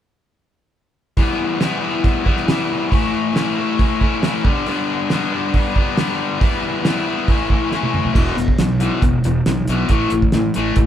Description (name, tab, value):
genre	classic rock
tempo	138 BPM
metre	4/4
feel	straight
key	E dorian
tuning	A4 = 440 Hz
part	distorted electric guitar	riff	1.2-10.9 s	E2 to E4	-18 LUFS	left 3 dB	distortion
part	cloth-damped thuddy drum kit	drums	1.2-10.9 s	crash cymbal, hi-hat, kick drum, snare drum, toms	-18 LUFS	right 1 dB	none
part	fuzz fingered electric bass	bass	8.2-10.9 s	E1 to A2	-21 LUFS	right 2 dB	overdrive
room	moderate studio reverb, RT60 0.8 s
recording	band playing live in one room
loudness	-16 LUFS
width	side -10 dB against mid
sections	1.2-8.2 A section; 8.2-10.9 B section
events	drum fill 7.7-8.2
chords	1.2 Em; 2.9 A; 4.5 G; 6.4 Em; 7.3 A; 8.2 E5; 9.9 A5